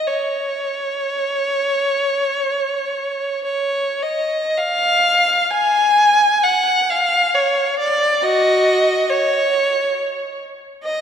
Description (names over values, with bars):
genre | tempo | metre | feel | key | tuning
classical, free, expressive piece for unaccompanied violin | free time | none | none | unclear | A4 = 440 Hz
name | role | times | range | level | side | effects
warm violin | solo | 0.0-11.0 s | F#4 to G#5 | -16 LUFS | equal | none
room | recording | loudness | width
wet church reverb, RT60 2.9 s | dark, warm production | -15 LUFS | side -8 dB against mid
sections
0.0-4.6 A section; 4.6-11.0 B section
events
none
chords
none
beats
free time